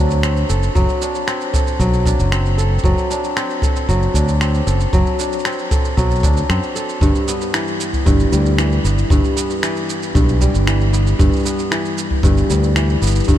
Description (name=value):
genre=folktronica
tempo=115 BPM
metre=4/4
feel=straight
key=G major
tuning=A4 = 438 Hz
part: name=kora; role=arpeggios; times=0.0-13.4 s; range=G2 to A4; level=-19 LUFS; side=left 1 dB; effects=ping-pong delay
part: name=modern bright fingered electric bass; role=bass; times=0.0-13.4 s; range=F#1 to F#2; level=-16 LUFS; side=equal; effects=none
part: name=electronic cabasa and finger snaps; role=drums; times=0.1-13.4 s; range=none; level=-25 LUFS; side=right 2 dB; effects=none
part: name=kick drum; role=drums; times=0.8-13.4 s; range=none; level=-18 LUFS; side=equal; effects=none
room=light reverb, studio ambience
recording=none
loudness=-14 LUFS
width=side -12 dB against mid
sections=0.0-7.0 A section; 7.0-13.4 B section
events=none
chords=0.0 D7/F#; 7.0 G6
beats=0.23 | 0.76 1.28 1.80 2.32 | 2.84 3.36 3.89 4.41 | 4.93 5.45 5.97 6.50 | 7.02 7.54 8.06 8.58 | 9.10 9.62 10.15 10.67 | 11.19 11.71 12.23 12.76 | 13.28